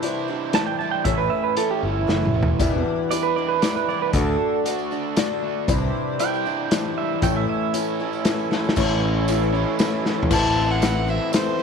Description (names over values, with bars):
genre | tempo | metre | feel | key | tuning
folk rock and heartland rock | 117 BPM | 3/4 | straight | unclear | A4 = 440 Hz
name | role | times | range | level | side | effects
dark upright piano | accompaniment | 0.0-11.6 s | C4 to B5 | -30 LUFS | left 14 dB | none
picked twelve-string acoustic guitar | accompaniment | 0.0-11.6 s | E2 to F#4 | -28 LUFS | left 15 dB | analog chorus
accordion | sustained chords | 0.0-11.6 s | C4 to D5 | -33 LUFS | right 10 dB | light tremolo tuning
overdriven semi-hollow guitar | riff | 0.0-11.6 s | E2 to F#4 | -29 LUFS | right 11 dB | none
vintage drum kit | drums | 0.0-11.5 s | crash cymbal, hi-hat, kick drum, ride cymbal, snare drum, splash cymbal, toms | -24 LUFS | left 1 dB | none
pedal steel guitar | second line | 0.5-7.7 s | E4 to A5 | -24 LUFS | right 10 dB | slapback echo
modern bright picked electric bass | bass | 1.1-11.2 s | E1 to D2 | -24 LUFS | left 1 dB | none
tambourine | percussion | 2.6-11.5 s | none | -38 LUFS | right 13 dB | none
dark fiddle | melody | 10.3-11.6 s | C5 to A5 | -24 LUFS | equal | none
room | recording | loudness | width
light reverb, small room ambience | 1960s-style stereo with parts hard left and right | -19 LUFS | side -6 dB against mid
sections
0.0-8.8 A section; 8.8-10.3 B section; 10.3-11.6 C section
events
pedal steel guitar solo 0.0-8.8; drum fill 2.1-2.6, 8.5, 10.1; upright piano fill 8.0-8.8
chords
0.0 Cadd9; 1.1 A; 2.6 Em7; 4.1 D; 5.7 Cadd9; 7.2 A; 10.3 Amadd9